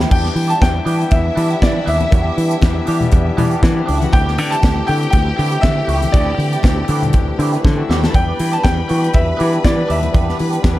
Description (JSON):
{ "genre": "disco", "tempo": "120 BPM", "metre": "4/4", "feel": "straight", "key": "unclear", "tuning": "A4 = 440 Hz", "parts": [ { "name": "barky tine electric piano", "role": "accompaniment", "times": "0.0-10.8 s", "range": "E3 to G4", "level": "-24 LUFS", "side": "left 4 dB", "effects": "overdrive, wide subtle chorus" }, { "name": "electric guitar at the edge of break-up", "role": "accompaniment", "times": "0.0-10.8 s", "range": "B3 to G4", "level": "-27 LUFS", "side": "right 7 dB", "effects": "wah" }, { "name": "modern bright fingered electric bass", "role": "bass", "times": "0.0-10.8 s", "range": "C#2 to E3", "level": "-18 LUFS", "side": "equal", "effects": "none" }, { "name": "tight funk drum kit", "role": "drums", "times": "0.0-10.8 s", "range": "crash cymbal, hi-hat, kick drum, snare drum", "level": "-16 LUFS", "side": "equal", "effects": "none" }, { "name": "congas", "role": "percussion", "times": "0.0-10.8 s", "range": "none", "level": "-26 LUFS", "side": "left 4 dB", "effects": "none" }, { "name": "clear concert grand piano", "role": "melody", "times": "0.1-10.4 s", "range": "D5 to A5", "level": "-21 LUFS", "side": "left 1 dB", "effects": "none" }, { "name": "clear symphonic string section", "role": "second line", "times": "0.1-10.8 s", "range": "G3 to B5", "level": "-25 LUFS", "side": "left 1 dB", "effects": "none" } ], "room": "studio ambience", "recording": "dark, warm production", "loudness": "-13 LUFS", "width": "side -16 dB against mid", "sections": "0.1-10.8 A section", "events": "drum fill 7.6-8.1", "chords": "0.1 D9sus4", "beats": "| 0.12 0.62 1.12 1.62 | 2.12 2.62 3.12 3.63 | 4.13 4.63 5.13 5.63 | 6.13 6.64 7.14 7.64 | 8.14 8.64 9.14 9.64 | 10.15 10.65" }